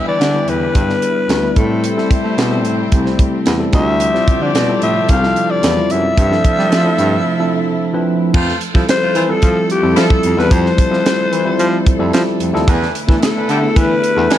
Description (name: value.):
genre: polished 1980s jazz-funk pop.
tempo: 111 BPM.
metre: 4/4.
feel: straight.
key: unclear.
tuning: A4 = 438 Hz.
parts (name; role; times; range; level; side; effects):
breathy alto saxophone; melody; 0.0-14.4 s; G4 to F5; -18 LUFS; left 2 dB; none.
warm horn section; second line; 0.0-14.4 s; E3 to C5; -24 LUFS; right 1 dB; none.
tine electric piano; accompaniment; 0.0-14.4 s; F3 to C5; -18 LUFS; left 1 dB; lush chorus.
clear studio string section; sustained chords; 0.0-14.4 s; C3 to A4; -25 LUFS; right 1 dB; none.
dark baritone saxophone; bass; 0.1-14.4 s; C2 to A3; -18 LUFS; equal; none.
tight funk drum kit; drums; 0.2-14.4 s; crash cymbal, hi-hat, kick drum, snare drum; -16 LUFS; right 1 dB; none.
room: light reverb, small room ambience.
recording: dark, warm production.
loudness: -12 LUFS.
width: side -12 dB against mid.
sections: 0.0-8.3 A section; 8.3-14.4 B section.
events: break 7.3-8.3.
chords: 0.0 Em7; 1.6 Am9; 3.7 Dm11; 6.2 G13sus4; 8.3 Fmaj7; 12.7 E7sus4.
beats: 0.21 0.75 1.29 | 1.83 2.38 2.92 3.46 | 4.01 4.55 5.09 5.63 | 6.17 6.72 7.26 7.80 | 8.34 8.89 9.43 9.97 | 10.51 11.05 11.60 12.14 | 12.68 13.22 13.76 14.30.